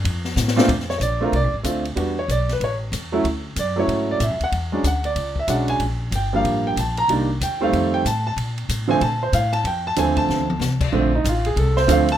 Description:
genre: jazz piano trio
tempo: 188 BPM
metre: 4/4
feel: swing 63% on 8ths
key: Bb major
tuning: A4 = 440 Hz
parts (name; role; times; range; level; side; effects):
- upright bass; bass; 0.0-12.2 s; G1 to Bb2; -23 LUFS; left 1 dB; none
- open jazz drum kit; drums; 0.0-12.1 s; crash cymbal, hi-hat, kick drum, ride cymbal, snare drum, toms; -28 LUFS; left 2 dB; none
- clear concert grand piano; melody; 0.6-12.2 s; Bb2 to Bb5; -20 LUFS; right 2 dB; none
room: light reverb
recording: minimal, uncompressed stereo recording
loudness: -18 LUFS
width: side -10 dB against mid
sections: 0.7-10.9 A section; 10.9-12.2 B section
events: drum fill 0.4-0.7, 10.3-10.6; grand piano solo 10.9-12.2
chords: 0.0 F; 0.7 Bbmaj7; 2.0 Em7; 2.6 A; 3.2 Dmaj7; 4.5 E13; 5.8 Gm9; 7.1 Cm7; 7.7 F7; 8.4 Bbmaj7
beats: 0.04 0.36 | 0.68 1.00 1.32 1.64 | 1.96 2.28 2.60 2.92 | 3.24 3.56 3.88 4.20 | 4.52 4.84 5.16 5.48 | 5.80 6.12 6.44 6.76 | 7.08 7.40 7.72 8.04 | 8.36 8.68 9.00 9.32 | 9.64 9.96 10.28 10.60 | 10.92 11.24 11.56 11.88

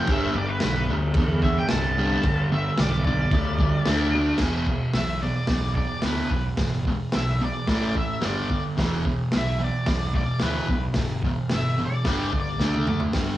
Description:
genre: garage rock duo or trio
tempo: 110 BPM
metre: 4/4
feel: straight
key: E minor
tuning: A4 = 442 Hz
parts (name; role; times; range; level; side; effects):
- octave-fuzz lead guitar; melody; 0.0-13.0 s; B4 to A5; -30 LUFS; left 1 dB; distortion, cassette tape
- fuzz guitar; riff; 0.0-13.4 s; E2 to D4; -25 LUFS; equal; distortion
- fuzz fingered electric bass; bass; 0.1-13.4 s; E1 to E2; -28 LUFS; equal; overdrive
- crunchy breakbeat drum kit; drums; 0.1-13.3 s; crash cymbal, hi-hat, kick drum, snare drum, toms; -28 LUFS; equal; cassette tape
room: little or no reverb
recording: home recording on cassette, small room ambience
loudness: -21 LUFS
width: side -14 dB against mid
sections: 0.0-4.4 A section; 4.4-13.4 B section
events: lead electric guitar solo 0.0-4.4; drum fill 12.6-13.1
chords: 0.1 G; 3.9 D5; 4.4 E5; 7.7 A5; 8.2 G5; 8.8 Em; 12.1 G5; 12.6 D5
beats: | 0.10 0.63 1.17 1.71 | 2.25 2.79 3.33 3.87 | 4.41 4.96 5.50 6.05 | 6.59 7.14 7.68 8.23 | 8.78 9.32 9.87 10.42 | 10.96 11.51 12.05 12.60 | 13.15

